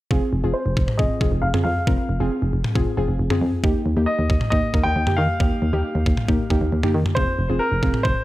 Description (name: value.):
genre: synth-pop.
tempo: 136 BPM.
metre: 4/4.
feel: straight.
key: F minor.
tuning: A4 = 439 Hz.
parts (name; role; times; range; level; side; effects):
warbly dusty pluck; accompaniment; 0.1-8.2 s; Bb3 to Bb4; -25 LUFS; equal; chorus.
solid FM bass; bass; 0.1-8.1 s; F1 to Eb3; -22 LUFS; equal; none.
detuned 8-bit digital drum machine; drums; 0.1-8.2 s; kick drum, toms; -22 LUFS; equal; none.
clear baby grand piano; melody; 0.5-8.2 s; Bb4 to G5; -25 LUFS; equal; low-pass filter, tape echo.
room: light reverb, digital ambience.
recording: none.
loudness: -18 LUFS.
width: side -16 dB against mid.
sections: 0.1-7.2 A section; 7.2-8.2 B section.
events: filter sweep on grand piano 0.1-7.2.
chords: 0.1 Fm; 3.6 Ebadd9; 7.2 Fm.